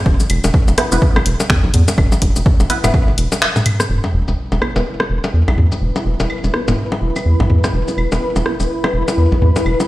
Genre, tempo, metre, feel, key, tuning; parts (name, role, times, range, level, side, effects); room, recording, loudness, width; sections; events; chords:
minimal techno; 125 BPM; 4/4; swing 59% on 16ths; A4 = 441 Hz
rubbery square bass; bass; 0.1-9.8 s; E1 to E2; -16 LUFS; equal; sidechain pumping
electronic kick drum; drums; 0.1-3.1 s; -14 LUFS; equal
punchy analog drum machine; drums; 0.2-9.9 s; finger snaps, hi-hat, shaker; -21 LUFS; left 1 dB; low-pass filter on hats, low-pass filter on perc, low-pass filter on snare
organic electronic drum kit; percussion; 0.2-9.9 s; bongos, claves, rim click, toms; -19 LUFS; left 1 dB; digital delay
filtered dub chord stab; stabs; 0.8-8.6 s; B3 to B4; -21 LUFS; equal; phaser, lush chorus, digital delay
sub drop; sound effects; 3.9-5.8 s; -25 LUFS; equal
granular cloud pad; texture; 4.9-9.9 s; E4 to B5; -22 LUFS; left 1 dB; built-in reverb, sidechain pumping
moderate small room reverb, RT60 0.5 s; played on a big sound system in a bare room, stone room reverb; -13 LUFS; side -17 dB against mid
0.0-3.9 A section; 3.9-9.9 B section
drop 0.0-3.9; band accent 3.4; impact 3.9-5.8
0.0 E5